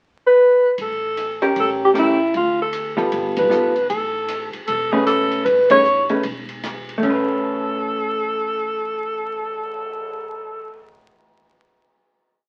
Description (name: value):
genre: jazz, small-group swing and bop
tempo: 154 BPM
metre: 4/4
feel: swing 64% on 8ths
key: A major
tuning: A4 = 440 Hz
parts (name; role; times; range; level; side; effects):
- breathy alto saxophone; melody; 0.3-10.9 s; E4 to C#5; -20 LUFS; equal; none
- upright bass; bass; 0.8-11.5 s; E1 to D2; -42 LUFS; equal; none
- open jazz drum kit; drums; 0.8-10.1 s; crash cymbal, cymbal swell, hi-hat, kick drum, ride cymbal, rim click; -36 LUFS; equal; none
- vintage hollow-body jazz guitar; accompaniment; 1.4-11.6 s; G3 to B4; -23 LUFS; equal; none
room: moderate club reverb, RT60 0.7 s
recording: very old 78 rpm record, vinyl crackle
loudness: -19 LUFS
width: mono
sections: 0.0-0.8 pickup bar; 0.8-7.0 A section; 7.0-10.2 final chord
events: band accent 3.3, 5.7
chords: 0.0 N.C.; 0.8 A7b9; 2.3 Dm; 3.1 G9; 3.9 Aadd9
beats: 0.38 | 0.77 1.16 1.56 1.95 | 2.34 2.73 3.12 3.51 | 3.90 4.29 4.68 5.07 | 5.46 5.85 6.24 6.63 | 7.02 7.41 7.80 8.19 | 8.58 8.97 9.37 9.76